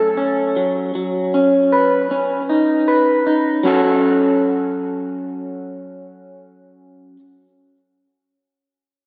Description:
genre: rock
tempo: 78 BPM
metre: 4/4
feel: straight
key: F# dorian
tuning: A4 = 439 Hz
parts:
  - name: electric guitar through a small old amp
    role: arpeggios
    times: 0.0-7.2 s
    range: F#2 to B4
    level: -18 LUFS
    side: equal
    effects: subtle chorus, tape echo
room: wet lush hall reverb, RT60 1.9 s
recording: big arena sound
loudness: -17 LUFS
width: mono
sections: 0.0-3.6 A section; 3.6-6.7 B section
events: none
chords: 0.0 F#m; 0.5 Badd9/F#; 3.6 F#m

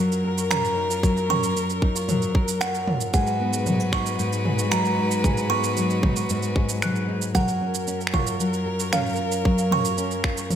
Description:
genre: folktronica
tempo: 114 BPM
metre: 4/4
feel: straight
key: F# major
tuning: A4 = 440 Hz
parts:
  - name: rich string quartet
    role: sustained chords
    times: 0.0-10.6 s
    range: F#2 to B4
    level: -27 LUFS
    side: left 2 dB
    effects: none
  - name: nylon-string guitar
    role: arpeggios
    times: 0.0-10.6 s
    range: G#2 to A#4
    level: -26 LUFS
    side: equal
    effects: digital delay
  - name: organic electronic drum kit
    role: drums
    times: 0.1-10.6 s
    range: finger snaps, shaker, toms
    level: -28 LUFS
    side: right 2 dB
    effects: none
  - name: buzzing kalimba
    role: second line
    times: 0.5-10.0 s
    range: E#5 to F#6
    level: -28 LUFS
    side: right 4 dB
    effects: tape echo
  - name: electronic kick drum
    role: drums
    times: 1.0-10.3 s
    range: none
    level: -23 LUFS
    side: equal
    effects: none
room: moderate echo chamber reverb, RT60 1.7 s, small room ambience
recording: none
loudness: -21 LUFS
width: side -9 dB against mid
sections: 0.0-10.6 A section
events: none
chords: 0.0 F#maj7; 3.1 G#m7; 7.3 F#maj7

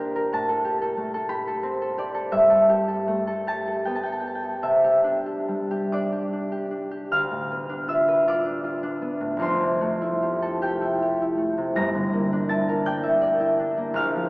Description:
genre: classical, solo harp piece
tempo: 44-62 BPM (dotted quarters)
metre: 6/8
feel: rubato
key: D minor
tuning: A4 = 440 Hz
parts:
  - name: concert harp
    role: solo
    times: 0.0-14.3 s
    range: F1 to Bb6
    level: -21 LUFS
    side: equal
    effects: none
room: wet cathedral reverb, RT60 6.0 s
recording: heard from further back in the room, small speaker sound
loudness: -21 LUFS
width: side -25 dB against mid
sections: 0.0-7.1 A section; 7.1-14.3 B section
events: none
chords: 0.3 Am9; 2.3 G69; 4.7 Cadd9; 7.1 Dm6; 9.4 Fmaj9; 11.8 Gm6

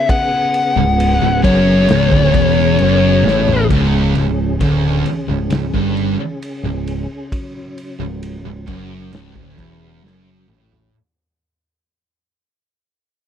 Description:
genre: stoner and doom metal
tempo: 66 BPM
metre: 4/4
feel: straight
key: C# phrygian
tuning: A4 = 440 Hz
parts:
  - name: fuzz lead guitar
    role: melody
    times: 0.0-3.7 s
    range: C#5 to F#5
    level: -16 LUFS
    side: left 4 dB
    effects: distortion, slapback echo
  - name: mellow tonewheel organ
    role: sustained chords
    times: 0.0-10.9 s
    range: C#3 to G#4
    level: -25 LUFS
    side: left 1 dB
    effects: slow rotary speaker, chorus vibrato
  - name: raw garage drum kit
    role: drums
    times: 0.1-10.9 s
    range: kick drum, ride cymbal, snare drum, toms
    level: -22 LUFS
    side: equal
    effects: none
  - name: thick fuzz guitar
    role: riff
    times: 0.8-10.9 s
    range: C#2 to A2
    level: -19 LUFS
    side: left 10 dB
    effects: distortion
  - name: thick fuzz guitar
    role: riff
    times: 0.8-10.9 s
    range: C#2 to A2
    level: -19 LUFS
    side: right 11 dB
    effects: distortion
  - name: modern bright picked electric bass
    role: bass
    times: 0.8-10.9 s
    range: C#1 to A1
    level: -20 LUFS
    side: equal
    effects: overdrive
room: little or no reverb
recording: dry, close 1970s-style studio recording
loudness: -12 LUFS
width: side -9 dB against mid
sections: 0.0-3.7 A section; 3.7-10.9 B section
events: lead electric guitar solo 0.0-3.7; drum fill 3.2-3.7, 10.0-10.9; fade-out 3.7-10.9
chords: 0.0 C#m

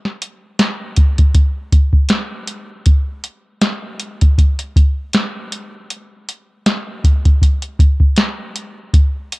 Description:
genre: indie pop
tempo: 79 BPM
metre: 4/4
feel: swing 55% on 16ths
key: none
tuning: none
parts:
  - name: soft vintage rhythm box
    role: drums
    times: 0.1-9.4 s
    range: hi-hat, kick drum, snare drum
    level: -13 LUFS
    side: equal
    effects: none
room: light reverb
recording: none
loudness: -13 LUFS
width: side -23 dB against mid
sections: 0.0-9.4 A section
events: none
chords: none

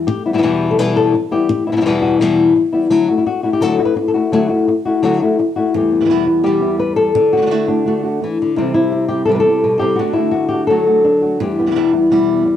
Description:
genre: flamenco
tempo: 170 BPM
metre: 4/4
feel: straight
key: E minor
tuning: A4 = 440 Hz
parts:
  - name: flamenco guitar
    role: melody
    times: 0.0-12.6 s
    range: E2 to B4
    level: -13 LUFS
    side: left 3 dB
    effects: plate reverb
  - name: flamenco guitar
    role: stabs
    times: 0.0-0.1, 5.7-12.5 s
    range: E2 to F#4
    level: -21 LUFS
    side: right 7 dB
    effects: cassette tape, plate reverb
room: wet studio reverb, RT60 0.6 s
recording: home recording on cassette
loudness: -13 LUFS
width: side -10 dB against mid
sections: 0.1-5.7 A section; 5.7-12.6 B section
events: none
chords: 0.1 Em; 2.9 Dadd9; 5.7 Em; 7.2 D; 8.6 C; 10.0 D; 11.4 Em

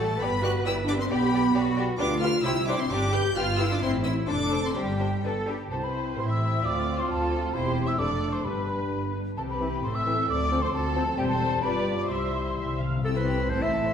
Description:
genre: quick classical-period movement for symphony orchestra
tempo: 123-137 BPM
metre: 2/4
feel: rubato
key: C major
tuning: A4 = 439 Hz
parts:
  - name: warm chamber violin section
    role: melody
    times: 0.0-13.9 s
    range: C4 to G6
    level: -34 LUFS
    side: left 4 dB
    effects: none
  - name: rich chamber violin section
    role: second line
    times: 0.0-13.9 s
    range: D4 to E5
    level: -34 LUFS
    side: left 3 dB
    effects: none
  - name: warm symphonic viola section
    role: accompaniment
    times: 0.0-13.9 s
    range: G3 to F5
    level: -33 LUFS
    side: equal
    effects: none
  - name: dark French horn section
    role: sustained chords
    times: 0.0-13.9 s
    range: E3 to G4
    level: -31 LUFS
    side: equal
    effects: none
  - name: clear studio double bass section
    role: bass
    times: 0.0-13.9 s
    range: E1 to D2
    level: -31 LUFS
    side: right 2 dB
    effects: none
  - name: warm studio cello section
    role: bass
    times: 0.0-13.9 s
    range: D2 to B4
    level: -33 LUFS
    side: right 1 dB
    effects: none
  - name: clear clarinet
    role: second line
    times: 5.7-13.9 s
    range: C4 to E5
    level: -34 LUFS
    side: equal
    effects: none
  - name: concert flute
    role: second line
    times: 5.7-12.8 s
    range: G5 to E6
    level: -30 LUFS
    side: left 1 dB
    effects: none
  - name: dark bassoon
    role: accompaniment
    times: 5.7-12.8 s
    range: E3 to C4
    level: -36 LUFS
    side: equal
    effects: none
  - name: timpani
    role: percussion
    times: 8.4-9.8, 12.1-13.0 s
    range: G2 to C3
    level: -34 LUFS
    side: left 3 dB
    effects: none
room: wet recital hall reverb, RT60 1.4 s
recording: heard from further back in the room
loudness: -24 LUFS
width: side -8 dB against mid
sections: 0.0-5.7 A section; 5.7-13.1 B section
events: timpani fill 12.1-13.1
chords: 0.2 G; 1.1 G/B; 2.0 G7/D (rootless); 2.4 C; 2.9 G; 3.8 Am; 4.3 Dm7/F; 4.8 N.C.; 5.7 C; 6.2 Am; 6.6 Dm7; 7.5 C/E; 8.0 Dm/F; 8.4 G; 9.4 C; 9.8 Am; 10.3 Dm7; 11.2 C/E; 11.6 G7; 12.1 C

